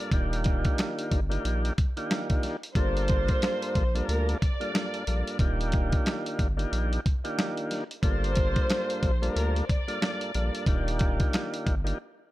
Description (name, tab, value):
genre	hip hop, boom-bap hip-hop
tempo	91 BPM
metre	4/4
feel	swing 61% on 16ths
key	unclear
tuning	A4 = 440 Hz
part	warm studio violin section	melody	0.0-10.6 s	Bb4 to D5	-33 LUFS	equal	high-pass filter, low-pass filter, digital delay
part	tonewheel organ	accompaniment	0.0-12.0 s	G2 to A4	-32 LUFS	equal	slow rotary speaker, cassette tape, high-pass filter, low-pass filter
part	dusty soul sampler-style drum kit	drums	0.0-12.0 s	hi-hat, kick drum, snare drum	-27 LUFS	equal	none
part	saturated sub bass	bass	0.1-11.9 s	Eb1 to D2	-29 LUFS	equal	none
room	little or no reverb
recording	none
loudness	-25 LUFS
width	side -16 dB against mid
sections	0.0-12.3 A section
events	break 12.0-12.3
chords	0.1 Ebmaj9; 2.8 Gm7; 5.4 Ebmaj9; 8.0 Gm7; 10.7 Ebmaj9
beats	| 0.12 0.78 1.44 2.10 | 2.76 3.42 4.08 4.73 | 5.39 6.05 6.71 7.37 | 8.03 8.69 9.35 10.01 | 10.67 11.33